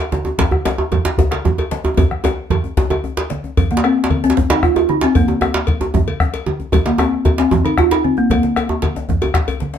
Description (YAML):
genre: west african traditional, West African drum ensemble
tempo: 152 BPM (dotted quarters)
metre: 12/8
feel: straight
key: unclear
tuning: A4 = 439 Hz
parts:
  - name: congas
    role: percussion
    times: 0.1-9.7 s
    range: none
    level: -21 LUFS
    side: right 5 dB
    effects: none
  - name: djembe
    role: percussion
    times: 0.1-9.8 s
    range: none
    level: -23 LUFS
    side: left 4 dB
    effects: none
  - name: djembe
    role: percussion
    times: 0.1-9.5 s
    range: none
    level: -20 LUFS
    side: right 2 dB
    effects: none
  - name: bombo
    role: percussion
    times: 0.4-9.5 s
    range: none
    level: -19 LUFS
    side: left 2 dB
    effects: none
  - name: cowbell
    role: percussion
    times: 0.4-9.6 s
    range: none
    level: -27 LUFS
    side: left 6 dB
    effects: none
  - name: balafon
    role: melody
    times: 3.7-8.6 s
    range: Bb3 to F4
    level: -16 LUFS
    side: left 1 dB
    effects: none
room: moderate studio reverb, RT60 0.6 s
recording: dark, warm production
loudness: -14 LUFS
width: side -9 dB against mid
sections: 0.0-3.6 A section; 3.6-9.8 B section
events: drum fill 2.0-3.6, 9.2-9.8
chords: none